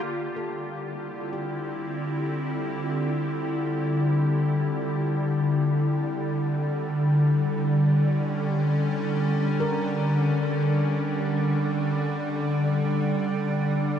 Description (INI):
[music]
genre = ambient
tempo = free time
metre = none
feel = none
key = D minor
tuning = A4 = 439 Hz
[part]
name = evolving wavetable pad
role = sustained chords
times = 0.0-14.0 s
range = D3 to G4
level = -28 LUFS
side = right 1 dB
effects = ensemble chorus, built-in reverb
[part]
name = organ-like drone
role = drone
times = 1.4-14.0 s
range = D3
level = -24 LUFS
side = left 1 dB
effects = ensemble chorus, built-in reverb
[part]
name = handpan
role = arpeggios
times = 0.4-2.5, 9.6-10.8 s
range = G4 to Bb4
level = -37 LUFS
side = left 1 dB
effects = ping-pong delay
[sound]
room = wet cathedral reverb, RT60 6.0 s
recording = in a vast, echoing space, nothing above 10.3 kHz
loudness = -23 LUFS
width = side -9 dB against mid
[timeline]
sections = 0.1-14.0 A section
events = fade-in on ambient pad 0.1-14.0; fade-in on handpan 0.1-14.0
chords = 0.1 Dm11; 6.7 Dsus4; 13.4 Bbadd9/D (rootless)